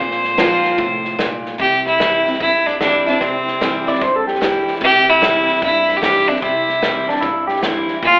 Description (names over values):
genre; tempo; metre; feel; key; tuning
honky-tonk and classic country; 149 BPM; 4/4; swing 64% on 8ths; C mixolydian; A4 = 440 Hz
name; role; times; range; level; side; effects
clear fiddle; melody; 0.0-8.2 s; C4 to C5; -14 LUFS; equal; none
picked steel-string acoustic guitar; accompaniment; 0.0-8.2 s; G2 to F4; -21 LUFS; equal; none
pedal steel guitar; sustained chords; 0.0-1.6 s; none; barely audible; none; none
upright bass; bass; 0.0-8.2 s; F1 to G2; -38 LUFS; equal; none
natural country drum kit; drums; 0.1-8.1 s; hi-hat, kick drum, snare drum; -23 LUFS; equal; none
electric guitar through a small old amp; second line; 3.9-7.9 s; D4 to D5; -19 LUFS; equal; none
room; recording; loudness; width
wet recital hall reverb, RT60 1.4 s; recorded in a church or concert hall, telephone sound; -13 LUFS; side -36 dB against mid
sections
0.0-1.6 A section; 1.6-8.2 B section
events
none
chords
0.0 Bbsus2; 1.6 C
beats
0.38 0.79 1.19 | 1.59 1.99 2.40 2.80 | 3.20 3.60 4.01 4.41 | 4.81 5.21 5.62 6.02 | 6.42 6.82 7.23 7.63 | 8.03